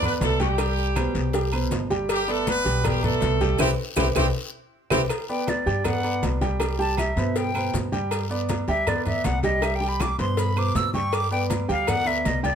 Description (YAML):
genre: latin, salsa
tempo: 159 BPM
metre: 4/4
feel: straight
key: G major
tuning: A4 = 441 Hz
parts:
  - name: brilliant horn section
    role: melody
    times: 0.0-5.0 s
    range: G3 to B4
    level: -25 LUFS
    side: right 1 dB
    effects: plate reverb
  - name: warm grand piano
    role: accompaniment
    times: 0.0-12.6 s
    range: B2 to G5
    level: -27 LUFS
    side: right 2 dB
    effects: none
  - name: upright bass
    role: bass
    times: 0.0-12.6 s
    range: G1 to G2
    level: -27 LUFS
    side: equal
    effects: none
  - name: agogo bells and timbales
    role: percussion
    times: 0.0-12.4 s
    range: none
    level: -35 LUFS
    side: right 5 dB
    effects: none
  - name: congas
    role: percussion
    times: 0.0-12.6 s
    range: none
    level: -30 LUFS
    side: left 2 dB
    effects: none
  - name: maracas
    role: percussion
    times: 0.0-12.6 s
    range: none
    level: -39 LUFS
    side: left 4 dB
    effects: none
  - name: cowbell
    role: percussion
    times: 0.2-12.6 s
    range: none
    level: -33 LUFS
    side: left 4 dB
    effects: none
  - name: guiro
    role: percussion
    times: 0.2-12.6 s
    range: none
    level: -40 LUFS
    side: left 6 dB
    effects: none
  - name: claves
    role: percussion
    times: 0.6-12.1 s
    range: none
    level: -37 LUFS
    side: right 8 dB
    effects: none
  - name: bright silver concert flute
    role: melody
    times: 5.3-12.6 s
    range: D5 to E6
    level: -26 LUFS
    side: left 1 dB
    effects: none
room: light reverb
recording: none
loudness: -21 LUFS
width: side -8 dB against mid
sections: 0.0-5.1 A section; 5.1-12.6 B section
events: band accent 3.6-5.1; drum fill 4.2-5.1; flute solo 5.1-12.6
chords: 0.0 G; 0.6 C5; 2.1 G; 3.6 Cmaj7; 5.1 Gmaj7; 6.6 Cmaj7; 8.1 G; 9.6 C5; 11.1 G